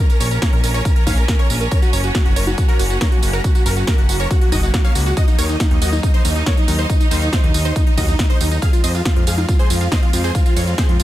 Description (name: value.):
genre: uplifting trance.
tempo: 139 BPM.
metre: 4/4.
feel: straight.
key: unclear.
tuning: A4 = 440 Hz.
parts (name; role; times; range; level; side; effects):
big supersaw lead; melody; 0.0-11.0 s; Eb4 to F5; -24 LUFS; right 1 dB; sidechain pumping, ping-pong delay.
wide unison pluck; second line; 0.0-11.0 s; Eb4 to F5; -29 LUFS; equal; sidechain pumping, ping-pong delay.
clear studio string section; sustained chords; 0.0-11.0 s; F3 to Eb4; -27 LUFS; equal; sidechain pumping.
big-room dance drum kit; drums; 0.1-11.0 s; congas, hi-hat, ride cymbal, snare drum, tambourine; -24 LUFS; right 1 dB; none.
fat analog bass; bass; 0.2-11.0 s; Gb1 to F2; -19 LUFS; equal; sidechain pumping.
electronic kick drum; drums; 0.4-10.9 s; none; -15 LUFS; equal; none.
room: digital ambience.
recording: none.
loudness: -14 LUFS.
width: side -14 dB against mid.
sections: 0.0-11.0 A section.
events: none.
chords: 0.0 Bbm; 1.7 Gb; 5.2 Ebm; 8.6 Fm.